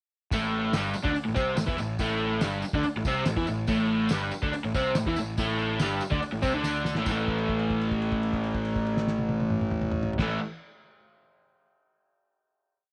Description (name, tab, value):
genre	garage rock duo or trio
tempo	142 BPM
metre	4/4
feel	straight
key	unclear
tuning	A4 = 441 Hz
part	raw garage guitar	riff	0.3-10.4 s	G2 to E4	-29 LUFS	equal	overdrive
part	fuzz picked electric bass	bass	0.3-10.4 s	G1 to E2	-35 LUFS	equal	overdrive
part	cloth-damped thuddy drum kit	drums	0.3-10.3 s	crash cymbal, hi-hat, kick drum, snare drum, toms	-34 LUFS	equal	none
part	tambourine	percussion	0.3-7.3 s	none	-46 LUFS	equal	none
room	little or no reverb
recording	none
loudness	-28 LUFS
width	mono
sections	0.3-7.1 riff; 7.1-10.4 final chord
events	drum fill 6.6-7.1; held note 7.1-10.2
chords	0.3 A5